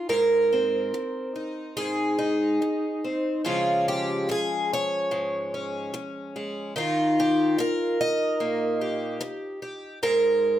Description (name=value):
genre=folk, solo fingerstyle acoustic guitar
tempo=73 BPM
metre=4/4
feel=rubato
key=unclear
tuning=A4 = 439 Hz
part: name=picked twelve-string acoustic guitar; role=solo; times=0.0-10.6 s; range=Ab2 to Eb5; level=-23 LUFS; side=equal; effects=none
room=light reverb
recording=none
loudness=-23 LUFS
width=side -12 dB against mid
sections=0.0-10.6 A section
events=none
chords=0.1 Ab; 3.5 Db; 6.8 Eb; 10.0 Ab5